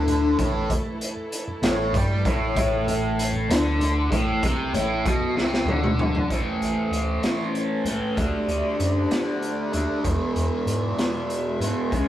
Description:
psychedelic rock; 64 BPM (dotted quarters); 6/8; straight; A minor; A4 = 441 Hz
dark chamber string section; sustained chords; 0.0-12.1 s; E3 to E5; -34 LUFS; right 1 dB
fuzz guitar; riff; 0.0-12.1 s; E2 to D4; -24 LUFS; equal; distortion, phaser
rubbery square bass; bass; 0.0-12.1 s; A1 to G#2; -28 LUFS; equal
raw garage drum kit; drums; 0.1-12.1 s; hi-hat, kick drum, snare drum, toms; -26 LUFS; equal
congas; percussion; 0.1-6.3 s; -36 LUFS; equal
wet studio ambience, RT60 0.5 s; rough rehearsal-room recording; -21 LUFS; side -12 dB against mid
0.0-6.3 A section; 6.3-12.1 B section
drum fill 5.4-6.3
0.0 Am; 8.2 D7sus4; 10.0 E
| 0.70 1.63 | 2.56 3.50 | 4.43 5.37 | 6.30 7.24 | 8.17 9.11 | 10.05 10.99 | 11.93

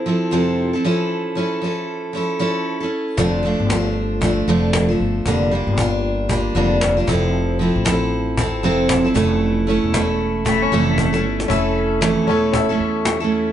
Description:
acoustic pop; 115 BPM; 4/4; swing 60% on 16ths; A4 = 440 Hz
picked steel-string acoustic guitar; accompaniment; 0.0-13.5 s; F2 to A4; -18 LUFS; right 2 dB
upright bass; bass; 3.2-13.5 s; E1 to E2; -23 LUFS; left 1 dB
cajon; drums; 3.2-13.2 s; -23 LUFS; left 1 dB
dark cello; second line; 10.5-11.5 s; A3 to C#4; -22 LUFS; left 9 dB
clear upright piano; accompaniment; 11.5-13.5 s; C#4 to E5; -22 LUFS; left 8 dB
light reverb; nothing above 10.6 kHz; -16 LUFS; side -10 dB against mid
0.0-11.5 A section; 11.5-13.5 B section
drum fill 11.0-11.5
0.0 Fmaj7; 0.8 A/F; 3.2 Dm/F; 5.3 Gm7/F; 7.1 Fmaj7; 9.2 A
0.06 0.58 | 1.10 1.62 2.14 2.66 | 3.18 3.70 4.22 4.74 | 5.26 5.78 6.30 6.82 | 7.34 7.86 8.38 8.90 | 9.42 9.94 10.46 10.98 | 11.50 12.02 12.54 13.05

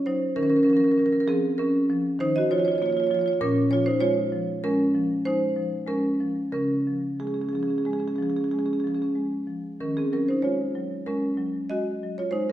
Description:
classical, contemporary piece for solo marimba; 90-100 BPM; 5/4; rubato; A4 = 440 Hz
marimba with medium hard mallets; solo; 0.0-12.5 s; Bb2 to Eb5; -22 LUFS; right 1 dB
wet recital hall reverb, RT60 1.6 s; recorded in a church or concert hall; -22 LUFS; side -12 dB against mid
0.0-12.5 A section
0.4 Bbm/Eb; 2.2 Db69/Eb; 3.4 Bbm7; 6.5 Db; 9.8 Ebm11
| 0.36 0.97 1.58 2.18 2.78 | 3.39 4.01 4.62 5.25 5.88 | 6.53 7.19 7.84 8.50 9.14 | 9.78 10.42 11.05 11.68 12.31

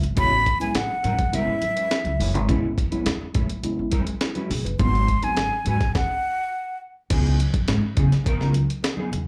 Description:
funk; 104 BPM; 4/4; straight; C# minor; A4 = 440 Hz
mellow electric guitar; accompaniment; 0.0-9.1 s; E3 to C#5; -35 LUFS; equal; ensemble chorus, slapback echo
upright bass; bass; 0.0-9.2 s; F#1 to C#3; -26 LUFS; equal
breakbeat sampler-style drum kit; drums; 0.0-9.3 s; crash cymbal, hi-hat, kick drum, snare drum; -28 LUFS; equal
breathy concert flute; melody; 0.2-6.8 s; E5 to B#5; -26 LUFS; equal; slapback echo
mellow tine electric piano; stabs; 0.2-5.6 s; F#3 to B4; -32 LUFS; equal
congas; percussion; 0.2-9.3 s; -36 LUFS; equal
light reverb; live gig heard through the venue's PA, club reverb; -23 LUFS; mono
0.0-7.1 A section; 7.1-9.3 B section
stop 6.0-7.1
0.0 Amaj9; 4.8 G#7#9; 7.1 C#m9
| 0.17 0.75 1.33 1.91 | 2.49 3.06 3.64 4.22 | 4.80 5.38 5.95 6.53 | 7.11 7.68 8.26 8.83

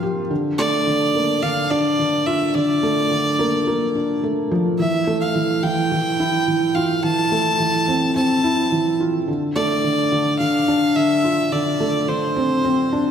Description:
electronica; 107 BPM; 4/4; straight; A4 = 441 Hz
clear violin; melody; 0.0-13.1 s; C5 to A5; -22 LUFS; right 1 dB; digital delay
felt-muted upright piano; riff; 0.0-13.1 s; D3 to G4; -19 LUFS; equal
wet recital hall reverb, RT60 1.6 s; -17 LUFS; side -8 dB against mid
0.0-13.1 A section
0.3 Bbmaj7/D; 4.8 Fmaj7; 9.3 Dm7
| 0.31 0.87 1.43 1.99 | 2.55 3.11 3.67 4.23 | 4.79 5.36 5.92 6.48 | 7.04 7.60 8.16 8.72 | 9.28 9.84 10.40 10.96 | 11.52 12.08 12.64

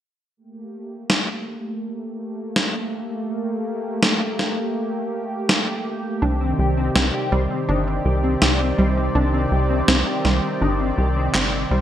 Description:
synthwave; 82 BPM; 4/4; straight; G minor; A4 = 438 Hz
lush unison pad; sustained chords; 0.4-11.8 s; C3 to D5; -24 LUFS; right 1 dB; chorus
electronic snare drum and handclaps; drums; 1.1-11.5 s; -21 LUFS; equal; gated reverb, gated reverb snare
analog pluck; arpeggios; 6.2-11.8 s; G3 to D4; -26 LUFS; right 2 dB; chorus, digital delay
mellow electric guitar; riff; 6.2-11.8 s; C4 to C5; -27 LUFS; left 5 dB; analog chorus, digital delay
tight sequencer bass; bass; 6.2-11.8 s; G1 to C2; -21 LUFS; equal
moderate plate reverb, RT60 1.4 s; bright 1980s-style digital production; -19 LUFS; side -11 dB against mid
0.4-11.8 A section
filter sweep on analog synth pad 0.4-11.8; drum fill 11.3-11.8
0.4 Gmadd9; 6.2 Cmadd9
| 0.37 1.10 1.83 2.56 | 3.29 4.03 4.76 5.49 | 6.22 6.95 7.68 8.42 | 9.15 9.88 10.61 11.34

